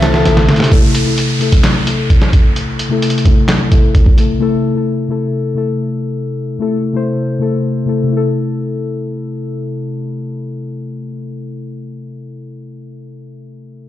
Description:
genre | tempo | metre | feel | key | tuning
hip hop, trap | 130 BPM | 4/4 | half-time | A minor | A4 = 441 Hz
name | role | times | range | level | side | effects
mellow electric guitar | melody | 0.0-0.7 s | A4 | -20 LUFS | left 3 dB | spring reverb, digital delay
breathy pan flute | second line | 0.0-0.7 s | E5 | -24 LUFS | right 4 dB | digital delay
muted felt-like synth keys | accompaniment | 0.0-13.9 s | C3 to C5 | -17 LUFS | left 2 dB | chorus, low-pass filter
dark analog pad | sustained chords | 0.0-0.7 s | C3 to E4 | -25 LUFS | right 3 dB | none
hard-hitting 808-style bass | bass | 0.0-0.5 s | A1 to C2 | -15 LUFS | right 1 dB | none
lo-fi sampler-style drum kit | drums | 0.0-4.3 s | handclaps, hi-hat, kick drum, snare drum | -11 LUFS | right 1 dB | vintage 12-bit sampler grit
downlifter | sound effects | 0.7-4.4 s | none | -24 LUFS | right 1 dB | none
room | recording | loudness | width
little or no reverb | played on a big sound system in a bare room, stone room reverb | -12 LUFS | side -13 dB against mid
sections
0.7-8.1 A section; 8.1-11.8 B section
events
drum fill 0.0-0.7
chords
0.0 Am

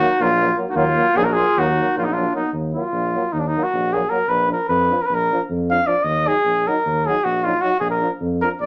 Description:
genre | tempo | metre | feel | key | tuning
balkan folk | 306 BPM (eighths) | 9/8 | straight | Eb harmonic minor | A4 = 439 Hz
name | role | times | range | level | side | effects
mellow cornet | melody | 0.0-8.7 s | D4 to F5 | -21 LUFS | equal | none
warm clarinet | second line | 0.0-2.5 s | Bb3 to Gb4 | -28 LUFS | equal | none
clear euphonium | accompaniment | 0.0-8.5 s | F3 to Gb3 | -31 LUFS | equal | none
warm euphonium | accompaniment | 0.0-8.5 s | Bb3 to Eb4 | -30 LUFS | equal | none
warm tuba | bass | 0.2-8.7 s | Bb1 to F2 | -27 LUFS | equal | none
room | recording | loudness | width
moderate club reverb, RT60 0.6 s | none | -19 LUFS | mono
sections
0.0-2.5 A section; 2.5-8.7 B section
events
cornet solo 2.5-8.7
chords
0.0 Ebm; 4.3 Bb; 6.0 Ebm; 7.8 Bb

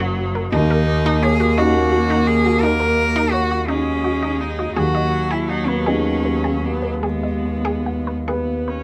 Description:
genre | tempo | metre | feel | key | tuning
neoclassical piano and strings | 47-58 BPM (dotted quarters) | 6/8 | rubato | G# minor | A4 = 439 Hz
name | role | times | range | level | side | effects
dark grand piano | accompaniment | 0.0-8.8 s | D#2 to B4 | -25 LUFS | equal | none
rich viola | accompaniment | 0.0-8.8 s | F#3 to C#4 | -26 LUFS | equal | none
resonant blip pluck | arpeggios | 0.0-8.8 s | D#4 to F#5 | -28 LUFS | equal | chorus
rich double bass | bass | 0.0-8.8 s | F#1 to D#2 | -27 LUFS | equal | none
clear cello | second line | 0.5-8.3 s | G#3 to A#4 | -24 LUFS | equal | none
room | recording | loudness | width
light reverb | none | -19 LUFS | mono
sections
0.0-8.8 A section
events
none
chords
0.0 F#7; 0.5 D#m7; 4.8 G#m7/D#

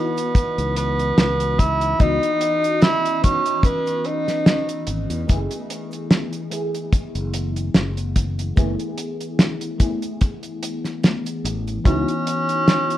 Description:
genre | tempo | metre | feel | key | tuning
vaporwave | 73 BPM | 4/4 | swing 55% on 16ths | F# dorian | A4 = 435 Hz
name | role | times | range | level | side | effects
warm tenor saxophone | melody | 0.0-4.9, 11.9-13.0 s | B3 to E4 | -21 LUFS | right 1 dB | vintage 12-bit sampler grit, tape echo
mellow FM electric piano | accompaniment | 0.0-13.0 s | E3 to D#5 | -29 LUFS | left 1 dB | phaser, ensemble chorus, tape echo
warbly tape-like pad | sustained chords | 0.0-13.0 s | E3 to D#5 | -30 LUFS | left 2 dB | chorus, built-in reverb
damped 70s drum kit | drums | 0.2-13.0 s | cabasa, hi-hat, snare drum | -19 LUFS | equal | none
modern bright fingered electric bass | bass | 0.3-12.0 s | F#1 to E2 | -24 LUFS | left 1 dB | none
kick drum | drums | 0.3-12.0 s | none | -16 LUFS | equal | none
room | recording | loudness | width
moderate studio reverb, RT60 0.6 s | rough home demo mix, cassette tape | -18 LUFS | side -13 dB against mid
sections
0.0-13.0 A section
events
none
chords
0.0 C#m11; 5.3 F#m11; 11.9 C#m11

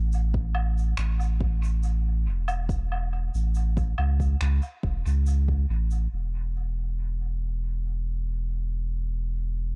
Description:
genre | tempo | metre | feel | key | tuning
ambient dub | 70 BPM | 4/4 | straight | unclear | A4 = 440 Hz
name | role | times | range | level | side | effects
warm sub bass | bass | 0.0-9.8 s | E1 to C#2 | -27 LUFS | equal | none
shaker, woodblock and finger snaps | drums | 0.1-9.7 s | none | -39 LUFS | equal | low-pass filter on perc, low-pass filter on snare, low-pass filter on room, dub echo
electronic kick drum | drums | 0.3-5.7 s | none | -32 LUFS | equal | overdrive
room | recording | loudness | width
little or no reverb | dark, warm production | -27 LUFS | mono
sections
0.0-6.1 A section; 6.1-9.8 B section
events
none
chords
none

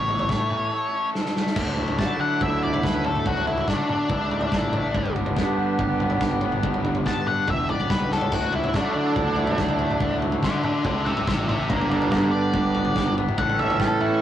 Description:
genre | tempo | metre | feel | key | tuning
indie rock | 142 BPM | 4/4 | straight | D major | A4 = 439 Hz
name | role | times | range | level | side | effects
octave-fuzz lead guitar | melody | 0.0-14.2 s | D4 to A5 | -26 LUFS | left 2 dB | distortion
overdriven electric guitar | riff | 0.0-14.2 s | G2 to A4 | -30 LUFS | left 4 dB | none
fuzz fingered electric bass | bass | 0.0-14.2 s | E1 to D3 | -29 LUFS | equal | overdrive
loose indie drum kit | drums | 0.1-14.1 s | crash cymbal, kick drum, snare drum, splash cymbal, toms | -26 LUFS | equal | none
twangy electric guitar | riff | 1.5-14.2 s | G2 to A4 | -26 LUFS | right 3 dB | none
room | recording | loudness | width
moderate studio ambience, RT60 0.5 s | rough rehearsal-room recording, tube saturation | -21 LUFS | side -11 dB against mid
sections
0.0-1.6 A section; 1.6-14.2 B section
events
drum fill 1.1-1.6, 8.1; lead electric guitar solo 1.6-14.2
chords
0.0 A; 1.6 Dadd9; 4.9 G; 8.3 Dadd9; 11.7 G; 13.4 A

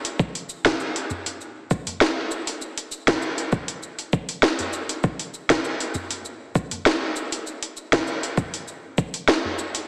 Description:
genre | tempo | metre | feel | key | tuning
downtempo | 99 BPM | 4/4 | straight | none | none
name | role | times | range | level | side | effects
afro-pop drum kit | drums | 0.0-9.9 s | cabasa, hi-hat, snare drum | -25 LUFS | equal | studio reverb
electronic kick drum | drums | 0.2-9.1 s | none | -28 LUFS | equal | studio reverb
udu | percussion | 1.1-9.6 s | none | -40 LUFS | equal | none
room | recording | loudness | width
wet lush hall reverb, RT60 2.0 s | heavily compressed radio sound, multiband compression, small speaker sound | -25 LUFS | mono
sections
0.0-9.9 A section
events
none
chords
none

